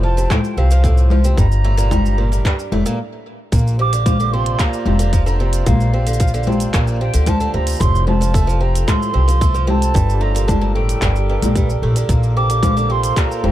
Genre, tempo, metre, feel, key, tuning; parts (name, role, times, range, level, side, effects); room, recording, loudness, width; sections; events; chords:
folktronica; 112 BPM; 4/4; straight; Bb major; A4 = 439 Hz
mellow hollow silver concert flute; melody; 0.0-13.5 s; F5 to D6; -24 LUFS; right 3 dB; tape echo
hand-pumped harmonium; sustained chords; 0.0-13.5 s; F3 to D5; -28 LUFS; right 2 dB
picked twelve-string acoustic guitar; arpeggios; 0.0-13.5 s; G2 to A3; -24 LUFS; right 2 dB; tape echo
upright bass; bass; 0.0-13.5 s; F1 to D2; -16 LUFS; equal
organic electronic drum kit; drums; 0.2-13.5 s; congas, handclaps, hi-hat, shaker; -22 LUFS; left 3 dB
electronic kick drum; drums; 0.3-13.3 s; -17 LUFS; equal
studio ambience; dark, warm production; -14 LUFS; side -13 dB against mid
0.0-3.5 A section; 3.5-13.5 B section
stop 3.0-3.5
0.0 F; 1.4 Gmadd9; 3.5 Bbadd9; 7.8 F; 10.0 Gmadd9; 12.1 Bbadd9